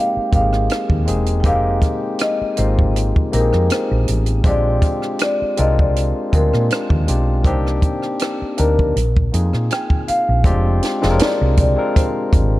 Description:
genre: R&B, neo-soul.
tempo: 80 BPM.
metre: 4/4.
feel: swing 53% on 16ths.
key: F dorian.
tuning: A4 = 441 Hz.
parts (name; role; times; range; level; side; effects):
marimba with medium mallets; melody; 0.0-12.6 s; Bb4 to G5; -22 LUFS; equal; none.
barky tine electric piano; accompaniment; 0.0-12.6 s; Ab3 to Ab5; -22 LUFS; left 2 dB; none.
woody fretless electric bass; bass; 0.2-12.6 s; E1 to Bb2; -17 LUFS; equal; none.
compact cocktail drum kit; drums; 0.3-12.5 s; hi-hat, kick drum, rim click, snare drum; -18 LUFS; equal; none.
room: light reverb, small room ambience.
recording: dark, warm production.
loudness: -15 LUFS.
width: side -16 dB against mid.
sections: 0.0-10.4 A section; 10.4-12.6 B section.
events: tine electric piano fill 9.3-10.4.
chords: 0.0 Fm11; 4.4 Bb13; 7.4 Cm9; 8.9 Bb9sus4; 10.4 Fm69.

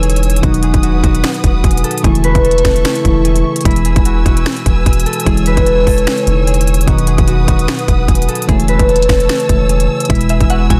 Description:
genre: hip hop, trap.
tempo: 149 BPM.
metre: 4/4.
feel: half-time.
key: E major.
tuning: A4 = 439 Hz.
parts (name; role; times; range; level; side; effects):
concert harp; melody; 0.0-10.8 s; E4 to B4; -20 LUFS; equal; low-pass filter.
muted felt-like synth keys; accompaniment; 0.0-10.8 s; B2 to E4; -20 LUFS; equal; chorus, low-pass filter.
dark studio string section; sustained chords; 0.0-10.8 s; A4 to E6; -26 LUFS; equal; none.
long sustained 808-style bass; bass; 0.0-10.8 s; E1; -17 LUFS; equal; none.
trap drum kit; drums; 0.0-10.8 s; finger snaps, hi-hat, kick drum, snare drum; -17 LUFS; equal; none.
swell; sound effects; 2.9-3.7 s; none; -27 LUFS; equal; none.
glassy wavetable pluck; second line; 10.3-10.8 s; E5 to G#5; -23 LUFS; equal; chorus.
room: digital ambience.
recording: dense, heavily limited modern master.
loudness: -13 LUFS.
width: mono.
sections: 0.0-3.7 A section; 3.7-10.8 B section.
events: none.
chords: 0.4 B/E; 2.0 A/E; 3.7 E; 5.3 C#m/E; 6.9 B/E; 8.5 A/E; 10.1 E.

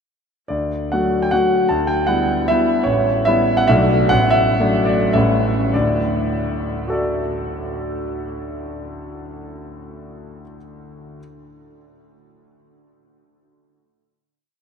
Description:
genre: classical, romantic triple-time dance for piano with dotted rhythms.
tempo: 92-166 BPM.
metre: 3/4.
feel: rubato.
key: D major.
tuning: A4 = 444 Hz.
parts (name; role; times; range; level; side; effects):
warm concert grand piano; solo; 0.5-11.2 s; A1 to A5; -17 LUFS; equal; none.
room: wet huge ambient reverb, RT60 7.9 s.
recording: in a vast, echoing space.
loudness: -16 LUFS.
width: side -6 dB against mid.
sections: 0.5-5.7 A section; 5.7-9.1 final chord.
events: slowing down 2.3-5.7.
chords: 0.5 D; 1.7 Em/D; 2.9 A9; 3.7 Bm7; 4.1 D/A; 5.1 A7; 5.7 D.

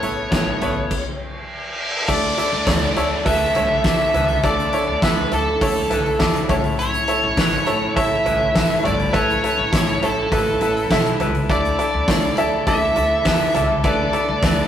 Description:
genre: piano-driven pop.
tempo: 102 BPM.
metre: 4/4.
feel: straight.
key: unclear.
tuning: A4 = 437 Hz.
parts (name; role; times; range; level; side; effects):
nasal lead guitar with a parked wah; melody; 0.0-14.7 s; A4 to E5; -21 LUFS; right 1 dB; overdrive.
bright grand piano; accompaniment; 0.0-14.7 s; A2 to E5; -22 LUFS; equal; none.
warm studio string section; sustained chords; 0.0-14.7 s; C#3 to A4; -30 LUFS; left 1 dB; none.
upright bass; bass; 0.0-14.7 s; G1 to E2; -27 LUFS; equal; none.
huge arena drum kit; drums; 0.0-14.6 s; crash cymbal, hi-hat, kick drum, snare drum, toms; -22 LUFS; equal; none.
reverse cymbal and downlifter; sound effects; 1.2-6.8 s; none; -28 LUFS; equal; none.
room: moderate studio reverb, RT60 0.6 s.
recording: rough rehearsal-room recording.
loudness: -16 LUFS.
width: side -10 dB against mid.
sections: 0.0-2.1 A section; 2.1-14.7 B section.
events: stop 0.9-2.1; reverse cymbal 1.2-2.1.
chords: 0.0 Aadd9; 2.1 Dsus2; 6.5 A; 11.5 Dsus2.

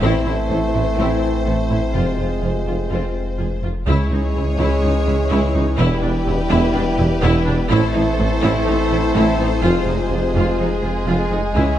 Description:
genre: cinematic, hybrid orchestral and electronic film score.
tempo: 125 BPM.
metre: 4/4.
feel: straight.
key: unclear.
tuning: A4 = 438 Hz.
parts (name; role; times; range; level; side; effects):
rich symphonic violin section; melody; 0.0-11.8 s; B4 to C#5; -28 LUFS; left 4 dB; none.
rich symphonic violin section; second line; 0.0-11.8 s; C4 to A4; -29 LUFS; left 2 dB; none.
rich symphonic viola section; accompaniment; 0.0-11.8 s; D4 to F4; -26 LUFS; left 1 dB; none.
clear trombone section; sustained chords; 0.0-11.8 s; C3 to A3; -24 LUFS; right 2 dB; none.
mellow French horn section; sustained chords; 0.0-11.8 s; B3 to F4; -25 LUFS; left 3 dB; none.
pure sine sub bass; bass; 0.0-11.8 s; E1 to C#2; -24 LUFS; left 1 dB; none.
rich symphonic cello section; bass; 0.0-11.6 s; C#2 to A2; -24 LUFS; right 1 dB; none.
rich symphonic double bass section; bass; 0.0-11.6 s; E1 to C#2; -24 LUFS; right 2 dB; none.
warm tuba; bass; 0.0-11.7 s; E1 to C#2; -26 LUFS; right 2 dB; none.
room: moderate scoring stage reverb, RT60 1.8 s.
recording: nothing above 11.0 kHz.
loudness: -16 LUFS.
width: side -11 dB against mid.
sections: 0.0-3.9 A section; 3.9-11.8 B section.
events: none.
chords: 0.0 Am; 2.0 Fm; 3.9 C#m; 5.8 Em; 7.7 Am; 9.6 Fm.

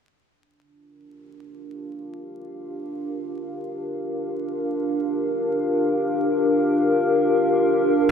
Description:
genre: ambient.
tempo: free time.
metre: none.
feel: none.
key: G minor.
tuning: A4 = 440 Hz.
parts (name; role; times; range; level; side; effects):
warbly tape-like pad; sustained chords; 1.6-8.1 s; D4 to F5; -21 LUFS; left 1 dB; chorus, built-in reverb.
room: wet huge ambient reverb, RT60 3.9 s.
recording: vinyl crackle.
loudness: -20 LUFS.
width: side -7 dB against mid.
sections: 0.3-8.1 A section.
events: fade-in on ambient pad 0.3-8.1.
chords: 0.3 Gm7.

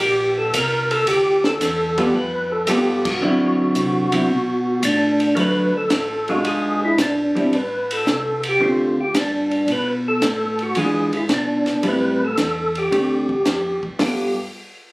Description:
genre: soul jazz organ trio.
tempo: 111 BPM.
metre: 4/4.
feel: swing 69% on 8ths.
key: unclear.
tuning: A4 = 440 Hz.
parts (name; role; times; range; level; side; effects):
percussive tonewheel organ; melody; 0.0-14.3 s; D4 to B4; -20 LUFS; equal; slow rotary speaker, chorus vibrato.
mellow tonewheel organ; bass; 0.0-14.3 s; G1 to D3; -28 LUFS; equal; slow rotary speaker.
compact cocktail drum kit; drums; 0.5-14.2 s; crash cymbal, hi-hat, kick drum, ride cymbal, snare drum; -24 LUFS; equal; none.
vintage hollow-body jazz guitar; accompaniment; 2.0-14.3 s; D3 to A4; -20 LUFS; equal; none.
room: moderate club reverb, RT60 0.6 s.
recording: recorded on a phone in the room, club reverb, compression.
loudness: -17 LUFS.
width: side -23 dB against mid.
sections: 0.0-5.4 A section; 5.4-14.0 B section.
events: band accent 3.0.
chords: 0.0 C7(no3); 1.1 G9; 3.2 D9; 5.4 Bm7; 6.5 E7b9; 7.5 Am; 8.6 D7sus4; 9.7 F#madd11; 10.8 E7b9; 11.8 Am7; 12.9 D7sus4; 14.0 G9.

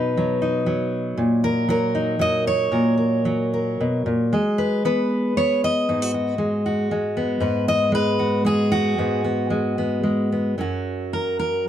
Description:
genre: folk, solo fingerstyle acoustic guitar.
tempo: 115 BPM.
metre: 3/4.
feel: rubato.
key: unclear.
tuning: A4 = 440 Hz.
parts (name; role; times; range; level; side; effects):
fingerpicked steel-string acoustic guitar; solo; 0.0-11.7 s; F#2 to D#5; -19 LUFS; equal; none.
room: light reverb.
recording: dark, warm production.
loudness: -19 LUFS.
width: side -10 dB against mid.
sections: 0.0-10.6 A section; 10.6-11.7 B section.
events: none.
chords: 0.0 B; 1.2 D#m7/A#; 4.3 G#m7; 10.6 F#.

